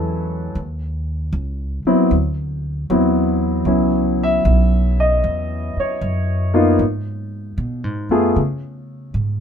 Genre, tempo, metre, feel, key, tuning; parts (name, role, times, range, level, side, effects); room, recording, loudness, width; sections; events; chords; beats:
jazz ballad; 77 BPM; 4/4; swing 67% on 8ths; A4 = 437 Hz
warm grand piano; accompaniment; 0.0-8.4 s; E3 to E5; -17 LUFS; left 1 dB
upright bass; bass; 0.0-9.4 s; B1 to C#3; -20 LUFS; right 1 dB
light reverb; minimal, uncompressed stereo recording; -16 LUFS; side -8 dB against mid
0.0-9.4 A section
0.0 F#m9; 0.5 D#m7; 2.1 D13; 3.7 C#m11; 6.8 G#m7; 8.4 C#5
| 0.55 1.33 2.11 2.89 | 3.67 4.45 5.23 6.02 | 6.80 7.58 8.36 9.15